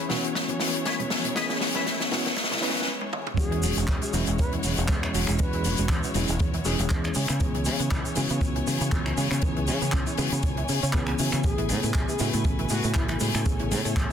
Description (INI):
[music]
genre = nu-disco, nu disco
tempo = 119 BPM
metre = 4/4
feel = swing 55% on 16ths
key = E major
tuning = A4 = 438 Hz
[part]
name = bell-like tine electric piano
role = accompaniment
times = 0.0-14.1 s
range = C#3 to B4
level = -30 LUFS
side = equal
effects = medium stereo tremolo, sidechain pumping, ping-pong delay
[part]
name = rich studio string section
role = sustained chords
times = 0.0-14.1 s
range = G#3 to G#5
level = -34 LUFS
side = left 2 dB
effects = sidechain pumping
[part]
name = electric guitar with an envelope filter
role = riff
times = 0.0-2.8 s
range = E4 to E5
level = -34 LUFS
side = left 5 dB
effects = ensemble chorus, ping-pong delay
[part]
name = open jazz drum kit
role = drums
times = 0.0-14.1 s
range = finger snaps, handclaps, hi-hat, shaker, snare drum, toms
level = -29 LUFS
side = left 2 dB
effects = none
[part]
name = congas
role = percussion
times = 0.1-2.6 s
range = none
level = -39 LUFS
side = right 3 dB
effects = none
[part]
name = kick drum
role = drums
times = 0.4-14.1 s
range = none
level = -27 LUFS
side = equal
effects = high-pass filter on kick, high-pass filter on snare, high-pass filter on room
[part]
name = mellow hollow jazz flute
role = melody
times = 3.4-6.1, 11.4-13.2 s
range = E4 to B4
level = -36 LUFS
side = left 1 dB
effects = tape echo
[part]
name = analog pluck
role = arpeggios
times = 3.4-14.1 s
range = C#3 to C#4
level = -35 LUFS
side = right 5 dB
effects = chorus, sidechain pumping, tape echo
[part]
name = fingered electric bass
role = bass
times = 3.4-14.1 s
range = E1 to C#3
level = -28 LUFS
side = equal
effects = sidechain pumping
[sound]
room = light reverb, small room ambience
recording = dense, heavily limited modern master, high-pass filter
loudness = -23 LUFS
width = side -8 dB against mid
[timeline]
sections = 0.0-3.4 A section; 3.4-14.1 B section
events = build-up 0.0-3.4; drum fill 0.0-2.9, 2.9-3.4; filter sweep on clean electric guitar 0.0-3.4; break 2.9-3.4; drop 3.4-14.1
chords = 0.0 E69; 7.2 C#m7; 11.4 Amaj9